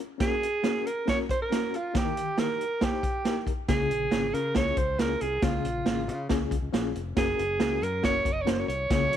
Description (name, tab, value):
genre	uptempo 1960s-style soul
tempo	138 BPM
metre	4/4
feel	straight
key	unclear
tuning	A4 = 440 Hz
part	reed electric piano	accompaniment	0.0-9.2 s	Db3 to C5	-34 LUFS	left 14 dB	fast tremolo
part	clear alto saxophone	melody	0.2-9.2 s	F4 to Eb5	-28 LUFS	right 2 dB	none
part	swinging big-band drum kit	drums	0.2-9.2 s	hi-hat, kick drum, snare drum	-28 LUFS	right 2 dB	none
part	modern bright fingered electric bass	bass	3.7-9.2 s	F1 to Db3	-34 LUFS	left 2 dB	none
room	studio ambience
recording	1960s-style stereo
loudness	-25 LUFS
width	side -10 dB against mid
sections	0.0-9.2 A section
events	none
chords	0.2 Gb; 1.9 Eb; 3.7 Db; 7.2 Gb